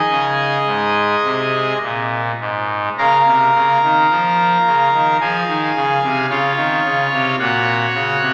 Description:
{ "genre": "classical, chorale-style piece for pipe organ", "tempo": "54 BPM", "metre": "4/4", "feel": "rubato", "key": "Db major", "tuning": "A4 = 441 Hz", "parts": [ { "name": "pipe organ, trumpet", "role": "solo", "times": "0.0-8.3 s", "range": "Ab2 to Bb5", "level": "-16 LUFS", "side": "equal", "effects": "none" } ], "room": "wet church reverb, RT60 2.6 s", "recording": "none", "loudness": "-16 LUFS", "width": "mono", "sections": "0.0-8.3 A section", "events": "none", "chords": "0.0 Absus4; 0.7 Ab; 3.0 Db; 7.4 Gb/Bb" }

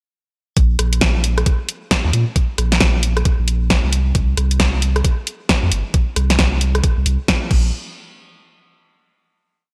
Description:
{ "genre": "UK garage, two-step garage", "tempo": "134 BPM", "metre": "4/4", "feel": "swing 62% on 16ths", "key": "unclear", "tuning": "A4 = 440 Hz", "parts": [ { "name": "saturated sub bass", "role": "bass", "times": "0.6-7.7 s", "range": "G1 to Bb2", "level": "-20 LUFS", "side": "equal", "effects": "none" }, { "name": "electronic kick drum", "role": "drums", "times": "0.6-7.6 s", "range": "none", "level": "-20 LUFS", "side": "equal", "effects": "none" }, { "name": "house drum kit", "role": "drums", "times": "0.6-7.6 s", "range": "crash cymbal, hi-hat, rim click, snare drum", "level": "-22 LUFS", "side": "equal", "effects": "gated reverb" } ], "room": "light reverb", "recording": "bright 1980s-style digital production", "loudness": "-17 LUFS", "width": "mono", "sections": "0.6-7.7 drop; 7.7-9.5 final hit", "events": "drop 0.6-7.7", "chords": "none" }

